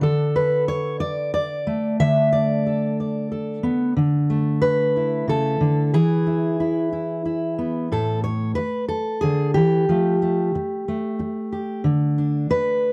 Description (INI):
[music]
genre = folk, solo fingerstyle acoustic guitar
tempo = 91 BPM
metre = 3/4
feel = straight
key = A major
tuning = A4 = 439 Hz
[part]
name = fingerpicked steel-string acoustic guitar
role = solo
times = 0.0-12.9 s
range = A2 to E5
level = -22 LUFS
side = equal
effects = none
[sound]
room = studio reverb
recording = dry, close 1970s-style studio recording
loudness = -22 LUFS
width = mono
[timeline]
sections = 0.0-7.9 A section; 7.9-12.9 B section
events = none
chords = 0.0 D5; 2.0 Bm7/D; 4.0 Dsus2; 5.9 E; 7.9 A5; 9.9 Fadd9; 11.9 D5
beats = | 0.02 0.69 1.34 | 2.00 2.66 3.31 | 3.97 4.62 5.28 | 5.93 6.59 7.25 | 7.91 8.57 9.23 | 9.89 10.55 11.20 | 11.85 12.51